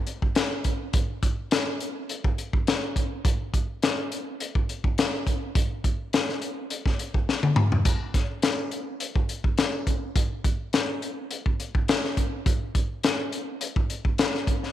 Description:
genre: blues.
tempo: 104 BPM.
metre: 4/4.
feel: straight.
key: none.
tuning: none.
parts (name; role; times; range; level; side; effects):
crunchy breakbeat drum kit; drums; 0.1-14.7 s; hi-hat, kick drum, snare drum, splash cymbal, toms; -24 LUFS; equal; none.
room: moderate plate reverb, RT60 2.0 s.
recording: 1960s-style stereo.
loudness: -24 LUFS.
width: side -12 dB against mid.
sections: 0.0-14.7 A section.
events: drum fill 7.3-7.9.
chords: none.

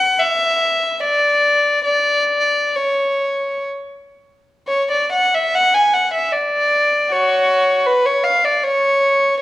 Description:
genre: classical, free, expressive piece for unaccompanied violin.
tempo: 50-82 BPM.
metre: 3/4.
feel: rubato.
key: unclear.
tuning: A4 = 442 Hz.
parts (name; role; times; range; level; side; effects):
rich violin; solo; 0.0-9.4 s; F#4 to G#5; -14 LUFS; left 1 dB; none.
room: wet recital hall reverb, RT60 1.5 s.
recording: worn, warbling old tape, cassette tape, warbly pitch drift.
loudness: -14 LUFS.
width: side -16 dB against mid.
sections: 0.0-4.7 A section; 4.7-9.4 B section.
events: none.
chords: none.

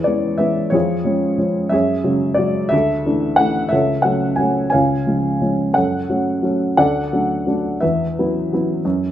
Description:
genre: classical, lyrical solo piano.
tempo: 60 BPM (dotted quarters).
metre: 6/8.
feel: rubato.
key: F# minor.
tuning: A4 = 438 Hz.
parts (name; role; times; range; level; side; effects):
warm upright piano; solo; 0.0-9.1 s; C#2 to G#5; -16 LUFS; equal; none.
room: moderate recital hall reverb, RT60 1.3 s.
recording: none.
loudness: -16 LUFS.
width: side -11 dB against mid.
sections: 0.0-9.1 A section.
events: upright piano fill 8.8.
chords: 0.0 E; 0.7 C#/E#; 1.7 F#sus2; 2.7 Dsus2; 3.7 F#m/C#; 4.7 C#; 5.8 F#m; 6.8 D; 7.8 Esus2.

